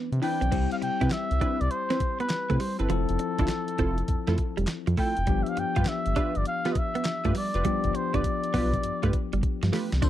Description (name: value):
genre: R&B, new jack swing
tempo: 101 BPM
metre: 4/4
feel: swing 66% on 16ths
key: unclear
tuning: A4 = 440 Hz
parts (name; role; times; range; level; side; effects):
- bell-like tine electric piano; accompaniment; 0.0-10.1 s; E3 to D5; -33 LUFS; left 13 dB; none
- direct-recorded clean electric guitar; riff; 0.0-10.1 s; F3 to F4; -31 LUFS; right 5 dB; analog chorus
- round analog bass; bass; 0.1-10.1 s; F1 to C3; -27 LUFS; equal; none
- clean 12-bit digital drum machine; drums; 0.1-10.1 s; crash cymbal, handclaps, hi-hat, kick drum, snare drum, tambourine; -30 LUFS; equal; none
- trumpet with cup mute; melody; 0.2-10.1 s; A4 to G5; -30 LUFS; equal; slapback echo
- funky polysynth comp; stabs; 0.2-9.9 s; C4 to B4; -34 LUFS; right 2 dB; chorus
room: digital ambience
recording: dry, close 1970s-style studio recording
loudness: -24 LUFS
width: side -12 dB against mid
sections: 0.5-10.0 A section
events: break 0.0-0.5; drum fill 7.7-10.0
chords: 0.0 Cmaj9; 0.5 Cmaj7; 2.9 Fmaj7; 5.3 G7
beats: | 0.52 1.11 1.71 2.30 | 2.90 3.49 4.08 4.68 | 5.27 5.87 6.46 7.06 | 7.65 8.24 8.84 9.43 | 10.03